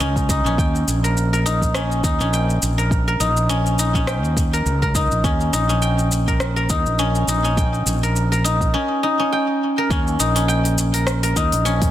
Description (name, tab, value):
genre	organic downtempo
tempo	103 BPM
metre	4/4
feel	swing 56% on 16ths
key	unclear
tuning	A4 = 441 Hz
part	guzheng	arpeggios	0.0-11.9 s	Db4 to G5	-20 LUFS	left 1 dB	digital delay
part	fretless electric bass	bass	0.0-11.9 s	Bb1 to Eb2	-20 LUFS	equal	none
part	organic electronic drum kit	drums	0.0-11.9 s	hi-hat, rim click, shaker	-26 LUFS	equal	overdrive
part	electronic kick drum	drums	0.2-11.9 s	none	-22 LUFS	equal	none
room	light reverb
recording	dense, heavily limited modern master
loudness	-16 LUFS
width	side -12 dB against mid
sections	0.0-9.9 A section; 9.9-11.9 B section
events	none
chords	0.0 Eb7